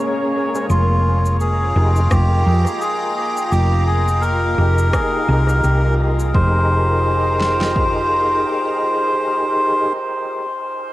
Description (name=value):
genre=ambient dub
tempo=85 BPM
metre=4/4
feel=swing 58% on 16ths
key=F minor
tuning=A4 = 441 Hz
part: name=soft additive organ-like pad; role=sustained chords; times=0.0-9.9 s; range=Ab3 to Bb5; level=-27 LUFS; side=equal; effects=ensemble chorus, built-in reverb, cassette tape
part: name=tonewheel organ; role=stabs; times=0.0-9.9 s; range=Db4 to Db5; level=-24 LUFS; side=left 1 dB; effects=chorus vibrato, slow rotary speaker, cassette tape, dub echo
part: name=bubbling stepped-filter texture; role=texture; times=0.0-6.4 s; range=Bb3 to Bb4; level=-31 LUFS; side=left 2 dB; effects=chorus, built-in reverb, cassette tape
part: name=electronic cabasa and rim click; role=drums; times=0.6-6.3 s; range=none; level=-31 LUFS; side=equal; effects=overdrive, cassette tape, dub echo
part: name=melodica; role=melody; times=0.7-9.9 s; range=F4 to C5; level=-19 LUFS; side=equal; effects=cassette tape, dub echo
part: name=hollow-body short-scale fingered electric bass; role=bass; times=0.7-8.4 s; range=F1 to F2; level=-16 LUFS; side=equal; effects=none
part: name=deep house drum kit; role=drums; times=2.1-7.9 s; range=kick drum, snare drum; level=-22 LUFS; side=equal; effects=overdrive, cassette tape
room=light reverb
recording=home recording on cassette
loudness=-15 LUFS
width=side -16 dB against mid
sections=0.0-6.3 A section; 6.3-9.2 B section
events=none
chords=0.0 Bbm9; 0.7 Fm11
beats=| 0.70 1.40 2.11 2.81 | 3.52 4.23 4.93 5.64 | 6.34 7.05 7.76 8.46